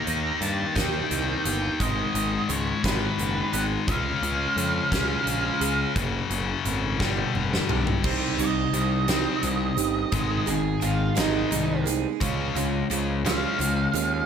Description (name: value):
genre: quiet-loud alternative rock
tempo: 58 BPM (dotted quarters)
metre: 6/8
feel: straight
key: C phrygian from 8.0 s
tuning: A4 = 440 Hz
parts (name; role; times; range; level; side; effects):
- octave-fuzz lead guitar; melody; 0.0-14.3 s; Eb4 to Bb5; -30 LUFS; right 3 dB; distortion
- picked steel-string acoustic guitar; arpeggios; 0.0-14.3 s; F#2 to Ab4; -31 LUFS; right 14 dB; none
- scooped high-gain guitar; riff; 0.0-13.9 s; F#2 to Eb4; -27 LUFS; left 6 dB; distortion
- fuzz picked electric bass; bass; 0.1-14.2 s; F1 to G2; -29 LUFS; equal; overdrive
- huge arena drum kit; drums; 0.1-14.1 s; crash cymbal, hi-hat, kick drum, snare drum, toms; -29 LUFS; equal; none
room: small room ambience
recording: none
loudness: -22 LUFS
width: side -7 dB against mid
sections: 0.0-8.0 A section; 8.0-14.3 B section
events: drum fill 7.0-8.0; lead electric guitar solo 8.0-14.3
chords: 0.0 Eb; 1.8 Abm; 3.9 Db; 6.0 F#m; 7.0 G7; 8.0 Cm; 10.1 Abm; 12.2 Db